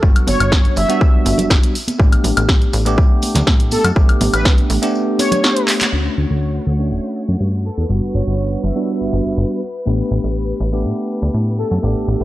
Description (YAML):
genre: filtered disco house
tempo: 122 BPM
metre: 4/4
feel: straight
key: A mixolydian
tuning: A4 = 440 Hz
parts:
  - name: bell-like tine electric piano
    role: accompaniment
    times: 0.0-12.2 s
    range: G3 to G4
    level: -20 LUFS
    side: right 1 dB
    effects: phaser, sidechain pumping, low-pass filter
  - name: plucky analog bass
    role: bass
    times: 0.0-12.2 s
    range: D1 to A2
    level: -18 LUFS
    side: equal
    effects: sidechain pumping, low-pass filter
  - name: electronic kick drum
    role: drums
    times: 0.0-4.6 s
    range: none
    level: -13 LUFS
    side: equal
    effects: overdrive
  - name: tambourine and congas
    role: percussion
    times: 0.0-5.9 s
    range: none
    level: -24 LUFS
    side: right 2 dB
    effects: sidechain pumping on perc, low-pass filter on perc
  - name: punchy analog drum machine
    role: drums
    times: 0.2-5.9 s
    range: handclaps, hi-hat, snare drum, woodblock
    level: -19 LUFS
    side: left 1 dB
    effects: sidechain pumping on hats, sidechain pumping on perc
  - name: analog synth brass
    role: melody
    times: 0.3-12.2 s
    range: A4 to E5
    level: -23 LUFS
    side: equal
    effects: chorus, sidechain pumping, low-pass filter, analog delay
  - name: rich studio violin section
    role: sustained chords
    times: 5.9-12.2 s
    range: F#4 to F#5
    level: -30 LUFS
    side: left 2 dB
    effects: sidechain pumping, low-pass filter
room: little or no reverb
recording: dry, gritty hardware recording, transformer saturation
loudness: -14 LUFS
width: side -16 dB against mid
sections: 0.0-5.9 A section; 5.9-12.2 B section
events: drum fill 5.7; band accent 5.8; filter sweep 5.9-12.2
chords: 0.0 Gmaj7; 1.7 A9sus4; 5.9 Dmaj7; 7.7 Gmaj7; 9.6 A9sus4